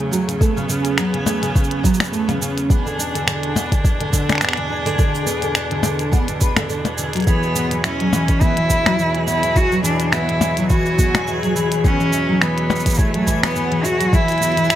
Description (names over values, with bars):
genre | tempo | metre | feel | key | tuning
folktronica | 105 BPM | 4/4 | swing 56% on 16ths | E mixolydian | A4 = 440 Hz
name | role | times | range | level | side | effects
clear string quartet | sustained chords | 0.0-14.8 s | E2 to D4 | -26 LUFS | right 2 dB | none
fingerpicked twelve-string acoustic guitar | arpeggios | 0.0-14.8 s | C#3 to B4 | -21 LUFS | equal | ensemble chorus, digital delay
minimal click drum kit | drums | 0.0-14.8 s | finger snaps, hi-hat, percussion blips, shaker | -22 LUFS | left 1 dB | none
backwards swelling texture | texture | 0.1-14.8 s | G#4 to G#5 | -28 LUFS | left 3 dB | built-in reverb
electronic kick drum | drums | 0.4-14.3 s | none | -17 LUFS | equal | overdrive
rich cello | melody | 7.3-14.8 s | A3 to F#4 | -20 LUFS | equal | digital delay
room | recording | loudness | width
moderate studio reverb, RT60 0.6 s | none | -16 LUFS | side -12 dB against mid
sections
0.0-14.8 A section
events
none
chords
0.0 A6/E; 2.7 Bm/E; 7.3 Esus2